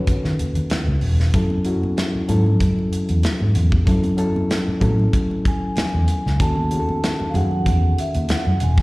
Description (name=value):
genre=lush 1970s-style soul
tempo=95 BPM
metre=4/4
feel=swing 54% on 16ths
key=unclear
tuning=A4 = 440 Hz
part: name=vibraphone with soft mallets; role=melody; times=0.0-0.1, 5.5-8.8 s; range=E5 to A5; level=-28 LUFS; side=right 1 dB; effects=slapback echo
part: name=mellow reed electric piano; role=accompaniment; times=0.0-8.8 s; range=D#3 to B4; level=-24 LUFS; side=left 1 dB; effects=none
part: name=modern studio drum kit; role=drums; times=0.1-8.8 s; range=hi-hat, kick drum, snare drum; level=-22 LUFS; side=equal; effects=none
part: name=congas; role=percussion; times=0.1-8.6 s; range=none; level=-31 LUFS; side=right 2 dB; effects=none
part: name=vintage muted fingered electric bass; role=bass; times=0.2-8.8 s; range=E1 to D#3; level=-19 LUFS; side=equal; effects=none
room=studio reverb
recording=live gig heard through the venue's PA, recital hall reverb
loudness=-17 LUFS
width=side -21 dB against mid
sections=0.0-8.8 A section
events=none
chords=0.0 D#m7b5; 1.3 F#m7; 6.4 D#m7b5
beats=0.08 0.71 | 1.34 1.98 2.61 3.24 | 3.87 4.50 5.14 5.77 | 6.40 7.03 7.67 8.30